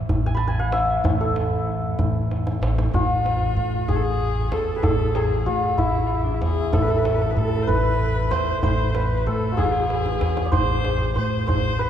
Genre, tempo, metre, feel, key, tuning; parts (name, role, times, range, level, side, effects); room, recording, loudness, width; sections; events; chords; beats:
Persian modal ensemble; 63 BPM (dotted quarters); 6/8; straight; A avaz esfahan; A4 = 439 Hz
santur; melody; 0.0-11.9 s; E4 to B5; -24 LUFS; equal
upright bass; bass; 0.0-11.9 s; A1 to A2; -23 LUFS; equal
tombak; percussion; 0.1-11.6 s; -26 LUFS; equal
clear kamancheh; second line; 2.9-11.9 s; D4 to C5; -29 LUFS; left 4 dB
wet cathedral reverb, RT60 4.1 s; recorded in a church or concert hall; -19 LUFS; side -10 dB against mid
0.0-2.9 A section; 2.9-11.9 B section
drum fill 2.3-2.9, 9.9-10.5
0.10 | 1.04 1.99 | 2.94 3.89 | 4.84 5.79 | 6.74 7.69 | 8.64 9.59 | 10.53 11.48